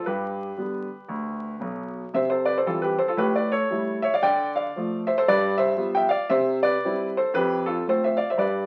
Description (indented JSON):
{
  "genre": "jazz, stride piano",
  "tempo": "115 BPM",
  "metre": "4/4",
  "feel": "swing 60% on 8ths",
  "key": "C major",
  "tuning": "A4 = 440 Hz",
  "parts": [
    { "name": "clear concert grand piano", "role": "solo", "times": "0.0-8.7 s", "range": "B1 to G5", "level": "-24 LUFS", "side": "equal", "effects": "none" }
  ],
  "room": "wet studio reverb, RT60 0.7 s",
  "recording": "very old 78 rpm record, vinyl crackle",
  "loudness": "-24 LUFS",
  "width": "mono",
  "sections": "0.0-8.7 A section",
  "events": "none",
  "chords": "0.0 G; 2.1 C; 3.2 A7; 4.2 Dm; 5.3 G7; 6.3 C; 7.4 F"
}